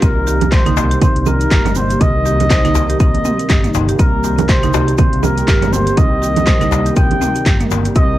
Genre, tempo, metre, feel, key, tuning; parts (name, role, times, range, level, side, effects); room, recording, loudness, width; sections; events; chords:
afro house; 121 BPM; 4/4; swing 58% on 16ths; C minor pentatonic; A4 = 440 Hz
trumpet with cup mute; melody; 0.0-8.2 s; Bb4 to G5; -20 LUFS; equal; cassette tape, tape echo
warm analog pad; sustained chords; 0.0-8.2 s; C3 to G4; -21 LUFS; equal; chorus, sidechain pumping, cassette tape
marimba with hard mallets; arpeggios; 0.0-8.0 s; Bb3 to C5; -23 LUFS; right 2 dB; sidechain pumping, cassette tape, tape echo
smooth gliding synth bass; bass; 0.0-8.2 s; G1 to C2; -19 LUFS; equal; tube saturation, sidechain pumping
electronic kick drum; drums; 0.0-8.1 s; -13 LUFS; equal; small room ambience, cassette tape
house drum kit; drums; 0.0-8.1 s; handclaps, hi-hat, toms; -22 LUFS; equal; small room ambience, cassette tape
djembe; percussion; 0.0-8.1 s; -24 LUFS; left 5 dB
tube shaker; percussion; 0.0-8.1 s; -32 LUFS; right 12 dB
congas; percussion; 0.4-7.6 s; -21 LUFS; right 8 dB
light reverb; home recording on cassette; -11 LUFS; side -14 dB against mid
0.0-8.2 A section
0.0 Cm7